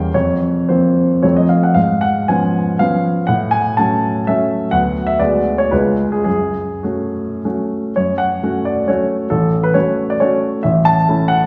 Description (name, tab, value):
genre	classical, romantic triple-time dance for piano with dotted rhythms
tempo	96-145 BPM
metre	3/4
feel	rubato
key	F# minor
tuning	A4 = 440 Hz
part	warm baby grand piano	solo	0.0-11.5 s	A1 to A5	-16 LUFS	equal	none
room	wet recital hall reverb, RT60 1.7 s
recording	heard from further back in the room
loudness	-16 LUFS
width	mono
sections	0.0-8.0 A section; 8.0-11.5 B section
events	none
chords	0.1 Fsus4; 1.2 F; 1.8 C#7/G#; 3.3 F#m/A; 4.7 Bm/D; 5.2 G#m7b5/D; 5.7 C#7; 6.3 F#m; 9.3 F#m/A; 10.6 A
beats	| 0.15 0.69 1.24 | 1.76 2.29 2.80 | 3.29 3.79 4.28 | 4.72 5.20 5.72 | 6.26 6.85 7.45 | 7.97 8.43 8.88 | 9.31 9.76 10.21 | 10.64 11.08